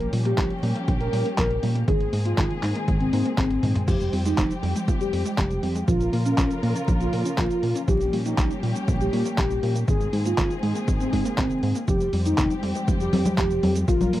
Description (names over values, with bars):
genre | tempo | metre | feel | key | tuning
italo disco | 120 BPM | 4/4 | straight | F minor | A4 = 440 Hz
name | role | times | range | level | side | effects
soft octave-layered synth lead | melody | 0.0-14.2 s | C4 to Bb4 | -27 LUFS | equal | chorus, phaser, tape echo
dark studio string section | sustained chords | 0.0-14.2 s | Db3 to Bb4 | -31 LUFS | left 1 dB | none
chorused synth bass | bass | 0.0-14.2 s | F1 to Bb2 | -26 LUFS | equal | none
dusty soul sampler-style drum kit | drums | 0.0-14.2 s | cabasa, congas, crash cymbal, handclaps, hi-hat, toms | -29 LUFS | equal | none
warbly dusty pluck | arpeggios | 0.1-14.2 s | Eb3 to Db4 | -31 LUFS | right 1 dB | chorus, tape echo
electronic kick drum | drums | 0.4-14.0 s | none | -25 LUFS | equal | overdrive
room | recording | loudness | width
little or no reverb | dry, close 1970s-style studio recording, vinyl crackle | -21 LUFS | side -14 dB against mid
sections
0.0-14.2 A section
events
drum fill 3.5-3.9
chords
0.0 Gm7b5/Bb; 1.9 Abadd9; 3.9 Fmadd9; 5.9 Bbm; 7.9 Gm7b5/Bb; 9.9 Abadd9; 11.9 Fmadd9